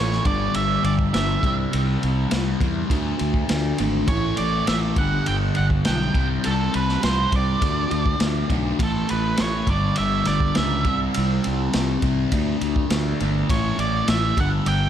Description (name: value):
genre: psychedelic rock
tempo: 102 BPM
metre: 4/4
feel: straight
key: unclear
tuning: A4 = 440 Hz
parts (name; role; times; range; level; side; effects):
- octave-fuzz lead guitar; melody; 0.0-14.9 s; A4 to G5; -25 LUFS; right 4 dB; distortion, tape echo
- fuzz guitar; riff; 0.0-14.9 s; G2 to D4; -24 LUFS; left 1 dB; distortion, phaser, tape echo
- fuzz fingered electric bass; bass; 0.0-14.9 s; G1 to E2; -25 LUFS; equal; overdrive
- crunchy breakbeat drum kit; drums; 0.1-14.8 s; kick drum, ride cymbal, snare drum; -25 LUFS; equal; tape echo
room: small room reverb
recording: echo-heavy mix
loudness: -19 LUFS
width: side -10 dB against mid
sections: 0.0-14.9 A section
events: none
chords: 0.3 G5; 1.4 C; 2.9 D5; 4.1 A5; 5.0 G; 6.2 C5; 7.6 D5; 8.8 A5; 9.7 G5; 10.9 C5; 12.3 D5; 13.5 A5; 14.4 G5